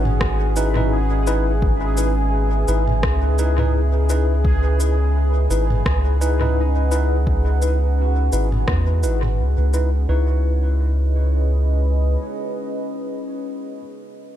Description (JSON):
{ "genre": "ambient dub", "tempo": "85 BPM", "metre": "4/4", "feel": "swing 56% on 16ths", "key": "C# minor", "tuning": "A4 = 441 Hz", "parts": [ { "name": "deep dark ambient pad", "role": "sustained chords", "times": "0.0-13.7 s", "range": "C#4 to F#5", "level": "-27 LUFS", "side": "right 1 dB", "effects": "chorus, built-in reverb" }, { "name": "concert harp", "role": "arpeggios", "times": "0.0-13.8 s", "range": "D#4 to G#5", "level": "-34 LUFS", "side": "right 1 dB", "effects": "low-pass filter, analog delay" }, { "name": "soft dub sub bass", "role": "bass", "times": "0.0-12.2 s", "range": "G#1 to E2", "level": "-18 LUFS", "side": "equal", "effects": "tube saturation" }, { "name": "bubbling stepped-filter texture", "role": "texture", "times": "0.0-10.1 s", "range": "G#4", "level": "-29 LUFS", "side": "right 1 dB", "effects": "chorus, built-in reverb" }, { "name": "organic electronic drum kit", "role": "drums", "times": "0.1-9.9 s", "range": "cabasa, rim click, toms", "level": "-28 LUFS", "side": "equal", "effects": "dub echo" }, { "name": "electronic kick drum", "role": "drums", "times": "0.2-8.8 s", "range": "none", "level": "-22 LUFS", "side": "equal", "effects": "none" }, { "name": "tine electric piano", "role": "stabs", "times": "0.6-13.8 s", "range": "D#4 to B4", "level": "-28 LUFS", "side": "left 2 dB", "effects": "medium stereo tremolo, low-pass filter, dub echo" } ], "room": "digital ambience", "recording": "echo-heavy mix", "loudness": "-17 LUFS", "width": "side -11 dB against mid", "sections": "0.0-10.1 A section; 10.1-12.9 B section", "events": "filter sweep on harp 0.0-10.1", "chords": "0.0 C#m9", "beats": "0.21 0.91 | 1.62 2.33 3.03 3.74 | 4.44 5.15 5.85 6.56 | 7.27 7.97 8.68 9.38 | 10.09 10.80 11.50 12.21" }